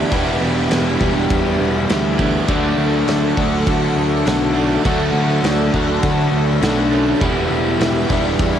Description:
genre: rock, shoegaze and dream pop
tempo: 102 BPM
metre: 4/4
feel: straight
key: D major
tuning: A4 = 440 Hz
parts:
  - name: string machine, violins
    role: sustained chords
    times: 0.0-8.6 s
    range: G4 to D6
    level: -27 LUFS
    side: equal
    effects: ensemble chorus
  - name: picked plugged-in twelve-string acoustic guitar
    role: arpeggios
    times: 0.0-8.6 s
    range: F#3 to A4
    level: -27 LUFS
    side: right 9 dB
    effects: lush chorus, analog delay
  - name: biting overdriven guitar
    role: riff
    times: 0.0-8.6 s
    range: D3 to F#4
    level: -21 LUFS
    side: right 1 dB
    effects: none
  - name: crunchy overdriven guitar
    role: riff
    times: 0.0-8.6 s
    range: D3 to E4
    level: -24 LUFS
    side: right 8 dB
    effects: reverse reverb
  - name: overdriven electric guitar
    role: riff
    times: 0.0-8.6 s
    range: E2 to G4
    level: -21 LUFS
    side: left 7 dB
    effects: wide subtle chorus
  - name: fuzz picked electric bass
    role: bass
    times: 0.0-8.6 s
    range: E1 to D3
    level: -21 LUFS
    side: equal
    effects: overdrive
  - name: loose indie drum kit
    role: drums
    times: 0.1-8.5 s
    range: crash cymbal, kick drum, snare drum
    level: -23 LUFS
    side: equal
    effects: cassette tape
room: light reverb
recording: home recording on cassette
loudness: -14 LUFS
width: side -9 dB against mid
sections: 0.0-8.6 A section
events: none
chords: 0.0 Em7; 2.5 Dmaj7; 7.2 Em7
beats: | 0.12 0.71 1.30 1.89 | 2.48 3.08 3.67 4.26 | 4.85 5.44 6.03 6.62 | 7.21 7.80 8.39

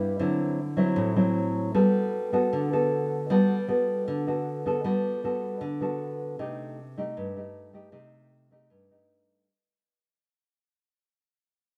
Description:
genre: bossa nova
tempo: 155 BPM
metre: 4/4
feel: straight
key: G major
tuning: A4 = 439 Hz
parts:
  - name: nylon-string guitar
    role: solo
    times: 0.0-9.5 s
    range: G2 to A4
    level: -27 LUFS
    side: equal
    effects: none
room: moderate echo chamber reverb, RT60 1.9 s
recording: dark, warm production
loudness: -27 LUFS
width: mono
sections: 0.0-3.3 A section; 3.3-9.5 B section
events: fade-out 3.3-9.5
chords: 0.2 D9; 1.7 Gmaj9; 6.4 Cm6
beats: | 0.20 0.58 0.97 1.36 | 1.75 2.13 2.52 2.91 | 3.29 3.68 4.07 4.46 | 4.84 5.23 5.62 6.00 | 6.39 6.78 7.17 7.55 | 7.94 8.33 8.71 9.10

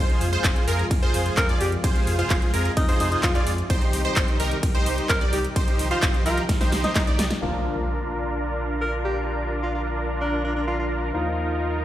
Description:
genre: EDM, festival progressive house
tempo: 129 BPM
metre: 4/4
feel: straight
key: unclear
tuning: A4 = 440 Hz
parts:
  - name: lush unison pad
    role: sustained chords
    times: 0.0-11.8 s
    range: C3 to Eb6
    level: -34 LUFS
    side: equal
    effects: chorus, sidechain pumping
  - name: wide unison pluck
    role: arpeggios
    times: 0.0-7.2 s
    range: Bb4 to D5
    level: -31 LUFS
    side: right 1 dB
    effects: phaser, sidechain pumping, tape echo
  - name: dense compressed supersaw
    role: riff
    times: 0.0-11.8 s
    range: D4 to D5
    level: -28 LUFS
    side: right 1 dB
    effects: sidechain pumping, low-pass filter, tape echo
  - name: saturated sub bass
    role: bass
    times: 0.0-11.8 s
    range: F1 to F2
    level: -28 LUFS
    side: equal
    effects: sidechain pumping
  - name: big-room dance drum kit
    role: drums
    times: 0.1-7.4 s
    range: handclaps, hi-hat, ride cymbal, snare drum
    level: -29 LUFS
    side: equal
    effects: low-pass filter on hats, low-pass filter on cymbals, low-pass filter on snare, low-pass filter on room
  - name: electronic kick drum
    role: drums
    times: 0.4-7.0 s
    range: none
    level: -22 LUFS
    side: equal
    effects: none
  - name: breathy alto saxophone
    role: melody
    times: 1.4-10.9 s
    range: D4 to Bb4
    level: -29 LUFS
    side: equal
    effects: tape echo
  - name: dark concert grand piano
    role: accompaniment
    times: 7.4-11.8 s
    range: F3 to F4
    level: -32 LUFS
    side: left 4 dB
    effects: sidechain pumping
  - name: impact and riser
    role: sound effects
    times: 7.4-11.8 s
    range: none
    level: -36 LUFS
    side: equal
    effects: none
room: light reverb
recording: played on a big sound system in a bare room, stone room reverb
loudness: -21 LUFS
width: side -13 dB against mid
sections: 0.0-7.4 A section; 7.4-11.8 B section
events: drop 0.0-7.4; drum fill 6.5-7.4; band accent 7.3; impact 7.4-9.3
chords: 0.0 Fm; 3.7 Cm; 7.4 Bb; 11.1 Ebsus2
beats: 0.44 0.91 1.37 | 1.84 2.31 2.77 3.23 | 3.70 4.17 4.63 5.09 | 5.56 6.03 6.49 6.96 | 7.42 7.89 8.35 8.82 | 9.28 9.75 10.21 10.68 | 11.14 11.61

